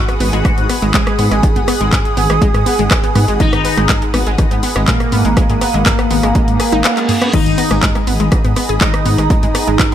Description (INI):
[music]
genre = melodic techno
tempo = 122 BPM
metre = 4/4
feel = straight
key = unclear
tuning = A4 = 440 Hz
[part]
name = resonant sweep polysynth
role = melody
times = 0.0-9.9 s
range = A#3 to G#4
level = -18 LUFS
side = right 1 dB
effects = chorus, phaser, sidechain pumping, digital delay
[part]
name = glassy wavetable pluck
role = second line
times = 0.0-9.9 s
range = A#2 to G#3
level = -25 LUFS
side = left 2 dB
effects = none
[part]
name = lush unison pad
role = sustained chords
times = 0.0-9.9 s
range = G#4 to D#6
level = -25 LUFS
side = equal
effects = chorus, phaser, sidechain pumping
[part]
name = analog pluck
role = arpeggios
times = 0.1-9.9 s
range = D#3 to G#4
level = -20 LUFS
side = equal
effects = chorus, sidechain pumping, dub echo
[part]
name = house drum kit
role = drums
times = 0.1-9.9 s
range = crash cymbal, handclaps, hi-hat, rim click, toms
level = -19 LUFS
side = equal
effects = studio reverb, sidechain pumping on hats, sidechain pumping on toms, sidechain pumping on cymbals
[part]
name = swelling detuned saw bass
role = bass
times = 0.2-9.8 s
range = G#1 to G#2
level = -17 LUFS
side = equal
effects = sidechain pumping
[part]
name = electronic kick drum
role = drums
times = 0.4-9.9 s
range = none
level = -15 LUFS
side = equal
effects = studio reverb
[part]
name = reverse cymbal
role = sound effects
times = 6.7-7.3 s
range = none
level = -25 LUFS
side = right 1 dB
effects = none
[sound]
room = light reverb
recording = none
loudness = -11 LUFS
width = side -10 dB against mid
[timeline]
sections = 0.0-9.9 A section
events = reverse cymbal 6.7-7.3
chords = 0.0 B6/G#